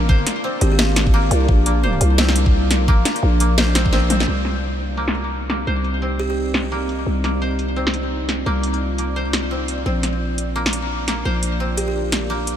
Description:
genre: half-time drum and bass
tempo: 172 BPM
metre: 4/4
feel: swing 60% on 16ths, half-time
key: C minor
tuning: A4 = 440 Hz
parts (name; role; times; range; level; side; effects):
- deep dark ambient pad; sustained chords; 0.0-12.6 s; Bb3 to D5; -27 LUFS; left 1 dB; chorus, built-in reverb, sidechain pumping
- koto; arpeggios; 0.0-12.6 s; Bb3 to C5; -26 LUFS; left 1 dB; low-pass filter, ping-pong delay
- growling 808-style bass; bass; 0.0-12.6 s; Ab1 to C2; -20 LUFS; equal; none
- electronic kick drum; drums; 0.1-3.9 s; none; -16 LUFS; equal; none
- drum and bass drum kit; drums; 0.3-12.6 s; hi-hat, snare drum, toms; -23 LUFS; equal; low-pass filter on hats, low-pass filter on snare, low-pass filter on toms, low-pass filter on room
- buzzing kalimba; melody; 0.6-0.8, 6.2-6.3, 11.8-11.9 s; G4; -30 LUFS; right 6 dB; ping-pong delay
room: light reverb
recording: none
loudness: -17 LUFS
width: side -10 dB against mid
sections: 0.0-4.3 A section; 4.3-12.6 B section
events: drop 0.0-4.3; drum fill 4.1; filter sweep on drum 4.3-12.6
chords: 0.0 Bb; 4.3 Cmadd9; 9.9 Bb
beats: | 0.09 0.44 0.79 1.14 | 1.49 1.83 2.18 2.53 | 2.88 3.23 3.58 3.93 | 4.28 4.62 4.97 5.32 | 5.67 6.02 6.37 6.72 | 7.07 7.42 7.76 8.11 | 8.46 8.81 9.16 9.51 | 9.86 10.21 10.55 10.90 | 11.25 11.60 11.95 12.30

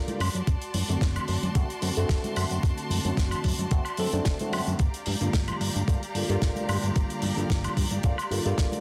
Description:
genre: nu-disco, nu disco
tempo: 111 BPM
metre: 4/4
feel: swing 54% on 16ths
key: G minor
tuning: A4 = 440 Hz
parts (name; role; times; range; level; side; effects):
- overdriven tine electric piano; accompaniment; 0.0-8.8 s; D3 to A4; -34 LUFS; equal; phaser, sidechain pumping, low-pass filter, digital delay
- clear studio string section; sustained chords; 0.0-8.8 s; F#4 to C6; -39 LUFS; equal; sidechain pumping
- fat analog bass; bass; 0.0-8.7 s; F#1 to G2; -31 LUFS; equal; none
- modern studio drum kit; drums; 0.1-8.8 s; hi-hat, snare drum, woodblock; -36 LUFS; equal; none
- congas; percussion; 0.1-8.8 s; none; -40 LUFS; equal; none
- electronic kick drum; drums; 0.5-8.7 s; none; -28 LUFS; equal; overdrive
room: light reverb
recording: dense, heavily limited modern master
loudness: -27 LUFS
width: mono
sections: 0.0-8.8 A section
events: filter sweep on tine electric piano 0.0-8.8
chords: 0.2 D7/F#; 4.8 Gm7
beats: | 0.47 1.01 1.55 2.10 | 2.64 3.18 3.72 4.26 | 4.80 5.34 5.88 6.42 | 6.96 7.50 8.04 8.58

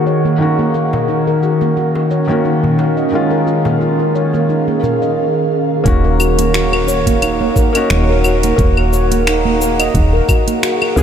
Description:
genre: organic downtempo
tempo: 88 BPM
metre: 4/4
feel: swing 55% on 16ths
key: Eb minor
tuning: A4 = 440 Hz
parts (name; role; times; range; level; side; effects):
- felt-muted upright piano; accompaniment; 0.0-11.0 s; Eb3 to Ab4; -19 LUFS; left 2 dB; sidechain pumping, low-pass filter, diffuse ambient delay
- ethereal airy pad; sustained chords; 0.0-11.0 s; Eb3 to Gb5; -18 LUFS; right 2 dB; ensemble chorus, built-in reverb, vintage 12-bit sampler grit, sidechain pumping
- handpan; arpeggios; 0.0-11.0 s; Bb3 to Eb5; -17 LUFS; right 1 dB; low-pass filter, diffuse ambient delay
- organic electronic drum kit; drums; 0.1-11.0 s; cabasa, claves, finger snaps, hi-hat; -20 LUFS; left 1 dB; overdrive, low-pass filter on perc, low-pass filter on hats, low-pass filter on snare
- darbuka; percussion; 0.7-5.0 s; none; -26 LUFS; left 2 dB; none
- woody FM bass; bass; 5.9-11.0 s; Eb1 to Db2; -16 LUFS; equal; none
- electronic kick drum; drums; 5.9-10.4 s; none; -15 LUFS; equal; none
room: wet huge ambient reverb, RT60 7.2 s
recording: dreamy mix soaked in reverb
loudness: -12 LUFS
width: side -8 dB against mid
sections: 0.0-5.9 A section; 5.9-11.0 B section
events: filter sweep on ambient pad 0.0-5.9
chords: 0.4 Gb/Eb; 3.1 Db/Eb; 5.9 Ebm7; 8.6 Ab7(no3)/Eb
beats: | 0.40 1.08 1.76 2.45 | 3.13 3.81 4.49 5.17 | 5.86 6.54 7.22 7.90 | 8.58 9.27 9.95 10.63

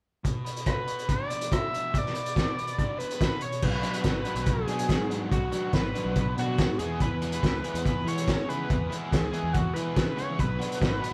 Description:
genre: indie rock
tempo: 142 BPM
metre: 4/4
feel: straight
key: unclear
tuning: A4 = 441 Hz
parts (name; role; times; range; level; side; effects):
- sludgy distorted guitar; riff; 0.2-11.1 s; E2 to B4; -39 LUFS; equal; overdrive
- cloth-damped thuddy drum kit; drums; 0.2-11.1 s; crash cymbal, hi-hat, kick drum, rim click, snare drum; -30 LUFS; equal; none
- overdriven synth lead; melody; 0.7-11.1 s; F#4 to E5; -34 LUFS; equal; distortion
- picked electric bass; bass; 3.6-11.0 s; G#1 to E3; -35 LUFS; equal; none
- overdriven semi-hollow guitar; riff; 3.8-11.1 s; E3 to G#4; -37 LUFS; equal; none
room: moderate studio reverb, RT60 0.7 s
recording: band playing live in one room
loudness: -28 LUFS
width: mono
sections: 0.2-3.6 A section; 3.6-11.1 B section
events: none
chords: 0.2 Bm; 3.4 N.C.; 3.6 Bm; 6.8 E; 10.4 Bm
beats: | 0.25 0.67 1.09 1.51 | 1.94 2.36 2.78 3.20 | 3.62 4.04 4.47 4.89 | 5.31 5.73 6.16 6.58 | 7.00 7.42 7.84 8.27 | 8.69 9.11 9.53 9.96 | 10.38 10.80

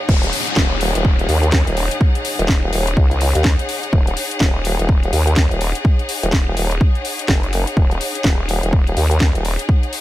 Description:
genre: bass house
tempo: 125 BPM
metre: 4/4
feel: swing 60% on 16ths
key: Eb minor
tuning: A4 = 435 Hz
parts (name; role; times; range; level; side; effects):
- clear studio string section; texture; 0.0-10.0 s; Eb4 to Gb5; -24 LUFS; left 2 dB; sidechain pumping
- vowel-sweep wobble bass; bass; 0.1-9.6 s; Eb1 to Eb2; -18 LUFS; equal; chorus, overdrive, sidechain pumping
- electronic kick drum; drums; 0.1-9.8 s; none; -15 LUFS; equal; overdrive
- house drum kit; drums; 0.1-10.0 s; crash cymbal, hi-hat, snare drum; -23 LUFS; left 1 dB; overdrive
- downlifter; sound effects; 0.1-3.9 s; none; -26 LUFS; left 2 dB; none
room: digital ambience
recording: none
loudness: -14 LUFS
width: side -15 dB against mid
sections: 0.1-10.0 A section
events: drop 0.1-10.0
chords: 0.1 Ebm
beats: | 0.09 0.57 1.05 1.53 | 2.01 2.49 2.97 3.45 | 3.93 4.41 4.89 5.37 | 5.85 6.33 6.81 7.29 | 7.77 8.25 8.73 9.21 | 9.69

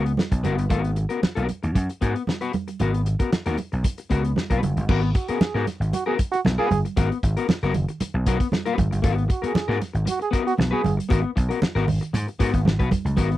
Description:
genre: funk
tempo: 116 BPM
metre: 4/4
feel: straight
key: G# minor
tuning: A4 = 441 Hz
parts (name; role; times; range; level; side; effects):
- electric guitar at the edge of break-up; accompaniment; 0.0-13.4 s; B3 to B4; -26 LUFS; left 6 dB; none
- vintage slap bass; bass; 0.0-13.4 s; F#1 to G#2; -23 LUFS; equal; none
- warm soul drum kit; drums; 0.1-13.4 s; crash cymbal, hi-hat, kick drum, snare drum; -23 LUFS; equal; none
- congas; percussion; 0.2-13.3 s; none; -27 LUFS; right 5 dB; none
- clear trombone; second line; 5.1-10.9 s; F#4 to G#4; -26 LUFS; right 6 dB; none
room: little or no reverb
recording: dry, close 1970s-style studio recording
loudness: -20 LUFS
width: side -14 dB against mid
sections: 0.0-4.9 A section; 4.9-13.4 B section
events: none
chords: 0.0 G#m9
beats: 0.18 | 0.70 1.23 1.75 2.28 | 2.80 3.33 3.85 4.37 | 4.89 5.41 5.93 6.45 | 6.97 7.49 8.01 8.52 | 9.04 9.56 10.07 10.59 | 11.11 11.62 12.14 12.65 | 13.17

